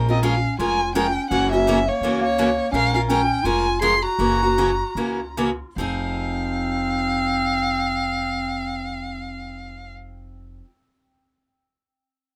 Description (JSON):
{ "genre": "acoustic string swing (jazz manouche)", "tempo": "142-168 BPM", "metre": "4/4", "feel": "swing 60% on 8ths", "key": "F minor", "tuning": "A4 = 442 Hz", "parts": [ { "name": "picked steel-string acoustic guitar", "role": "accompaniment", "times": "0.0-10.7 s", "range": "Db3 to Bb4", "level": "-27 LUFS", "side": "equal", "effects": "none" }, { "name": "upright bass", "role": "bass", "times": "0.0-10.6 s", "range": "F1 to Db2", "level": "-30 LUFS", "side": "equal", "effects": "none" }, { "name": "warm violin", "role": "melody", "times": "0.1-9.9 s", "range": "Db5 to C6", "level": "-26 LUFS", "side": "equal", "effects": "none" }, { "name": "breathy clarinet", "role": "second line", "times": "0.1-9.9 s", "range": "Bb3 to Ab4", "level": "-28 LUFS", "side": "equal", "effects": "none" } ], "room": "light reverb", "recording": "rough home demo mix", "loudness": "-22 LUFS", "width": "mono", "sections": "0.0-5.8 A section; 5.8-9.1 B section", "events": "slowing down 2.7-5.8", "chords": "0.0 Bbm7; 1.3 Gb7; 2.7 Bbm7; 4.2 Gb7; 5.8 Fm7" }